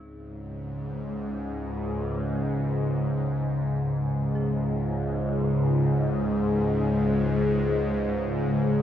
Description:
dark ambient drone; free time; A4 = 443 Hz
dark detuned synth bell; arpeggios; 0.0-8.8 s; D#4 to G#4; -46 LUFS; equal
bowed-like drone; drone; 0.4-8.8 s; C#2 to G#2; -24 LUFS; equal; built-in reverb, phaser
wet cathedral reverb, RT60 6.3 s; worn, warbling old tape, cassette tape, warbly pitch drift; -24 LUFS; side -10 dB against mid
0.0-8.8 A section
0.0 G#sus4/C#

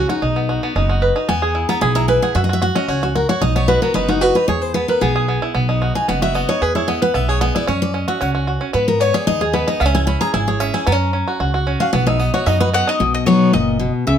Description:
bluegrass; 225 BPM; 4/4; straight; B major; A4 = 440 Hz
bluegrass banjo; melody; 0.0-13.0 s; B3 to B4; -20 LUFS; right 2 dB
picked steel-string acoustic guitar; accompaniment; 0.0-14.2 s; A#2 to B5; -18 LUFS; left 2 dB
upright bass; bass; 0.0-14.2 s; F#1 to G#2; -20 LUFS; equal
mandolin; melody; 12.7-14.2 s; C#5 to F#5; -19 LUFS; left 3 dB
light reverb; close, detailed microphones; -15 LUFS; side -9 dB against mid
0.0-4.5 A section; 4.5-13.0 A section; 13.0-14.2 B section
steel-string acoustic guitar solo 0.0-13.0
0.2 B; 1.3 E; 2.4 F#5; 3.4 B; 4.5 E; 5.5 B; 6.6 E; 7.7 F#5; 8.7 G#m; 9.8 C#m; 10.9 F#; 11.9 B

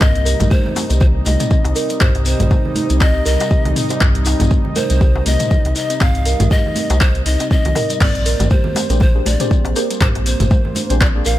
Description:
afro house; 120 BPM; 4/4; swing 57% on 16ths; C minor; A4 = 440 Hz
breathy mellow pan flute; melody; 0.0-11.4 s; C5 to F5; -24 LUFS; left 1 dB; digital delay
warm analog pad; sustained chords; 0.0-11.4 s; C3 to Eb5; -25 LUFS; equal; chorus, sidechain pumping
kalimba; arpeggios; 0.0-11.4 s; G3 to C5; -25 LUFS; right 3 dB; sidechain pumping, digital delay
round analog bass; bass; 0.0-11.4 s; Ab1 to C2; -17 LUFS; equal; tube saturation, sidechain pumping
deep house drum kit; drums; 0.0-11.4 s; crash cymbal, handclaps, hi-hat, toms; -23 LUFS; left 1 dB; small room reverb
electronic kick drum; drums; 0.0-11.1 s; -15 LUFS; equal; small room reverb
darbuka; percussion; 0.0-11.1 s; -24 LUFS; left 2 dB
shekere; percussion; 0.0-11.4 s; -29 LUFS; left 5 dB
congas; percussion; 0.4-10.9 s; -25 LUFS; right 3 dB
deep mellow chord stab; stabs; 8.9-11.2 s; Bb3 to D5; -24 LUFS; left 2 dB; chorus, cassette tape, sidechain pumping, digital delay
little or no reverb; -13 LUFS; side -14 dB against mid
0.0-11.4 A section
0.0 Cm7; 8.0 Bb13

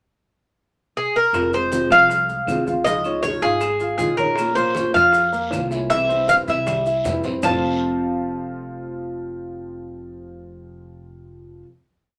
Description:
latin, Cuban son and guajira; 157 BPM; 4/4; straight; A4 = 440 Hz
Cuban tres; melody; 1.0-11.6 s; Ab4 to A5; -21 LUFS; equal
nylon-string guitar; accompaniment; 1.3-11.7 s; F2 to F4; -28 LUFS; equal
upright bass; bass; 1.3-11.6 s; F1 to F2; -36 LUFS; equal
bongos; percussion; 1.3-7.5 s; -35 LUFS; equal
claves; percussion; 1.3-7.5 s; -36 LUFS; equal
congas; percussion; 1.3-7.5 s; -38 LUFS; equal
maracas; percussion; 1.3-7.5 s; -43 LUFS; equal
clear baby grand piano; arpeggios; 1.5-11.6 s; E3 to F5; -30 LUFS; equal
guiro; percussion; 4.4-7.5 s; -41 LUFS; equal
wet studio ambience, RT60 0.5 s; -20 LUFS; mono
0.0-1.3 pickup bar; 1.3-7.4 verse; 7.4-10.5 final chord
drum fill 6.5-7.4
0.0 N.C.; 1.3 Fm; 2.9 Dbadd9; 4.4 Bbm; 5.9 C; 7.4 F

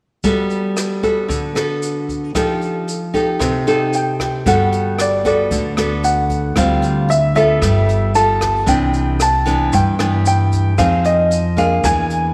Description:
bossa nova; 114 BPM; 4/4; straight; G major; A4 = 437 Hz
nylon-string guitar; accompaniment; 0.2-12.3 s; G2 to A4; -20 LUFS; equal
jazz brush drum kit; drums; 0.2-12.2 s; hi-hat, kick drum, rim click; -29 LUFS; equal
tube shaker; percussion; 0.2-12.3 s; -34 LUFS; equal
warm baby grand piano; melody; 4.0-12.3 s; D5 to A5; -20 LUFS; equal
upright bass; bass; 4.5-12.3 s; G1 to G2; -21 LUFS; equal
moderate echo chamber reverb, RT60 2.0 s; -16 LUFS; mono
0.2-4.5 A section; 4.5-12.3 B section
0.2 Gmaj9; 2.4 F9; 4.5 Gmaj9; 6.6 Dm7; 7.6 G9; 8.7 Cmaj9; 10.8 Fm7; 11.8 E7#11

